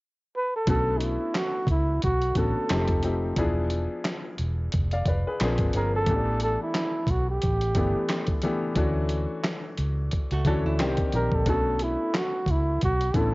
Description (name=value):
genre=R&B, neo-soul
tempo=89 BPM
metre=4/4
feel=swing 57% on 16ths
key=B minor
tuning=A4 = 443 Hz
part: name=breathy flugelhorn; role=melody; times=0.4-13.3 s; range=D#4 to B4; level=-28 LUFS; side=right 1 dB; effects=none
part: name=clear upright piano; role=accompaniment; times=0.7-13.3 s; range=D3 to F5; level=-29 LUFS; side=left 2 dB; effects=none
part: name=vintage muted fingered electric bass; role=bass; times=0.7-13.3 s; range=E1 to D2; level=-27 LUFS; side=equal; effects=none
part: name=dusty soul sampler-style drum kit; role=drums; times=0.7-13.3 s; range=handclaps, hi-hat, kick drum, snare drum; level=-28 LUFS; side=equal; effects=none
part: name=archtop guitar, miked and amplified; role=second line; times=10.3-11.0 s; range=A3 to A4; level=-34 LUFS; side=right 3 dB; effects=none
room=digital ambience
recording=worn, warbling old tape, cassette tape, warbly pitch drift, nothing above 7.6 kHz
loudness=-23 LUFS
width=side -22 dB against mid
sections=0.7-13.3 A section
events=none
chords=0.0 N.C.; 0.7 Bm9; 2.7 F9; 3.4 E7b9; 5.4 A#9; 6.1 A9sus4; 8.8 Dmaj9; 10.8 Cm9; 11.5 Bm9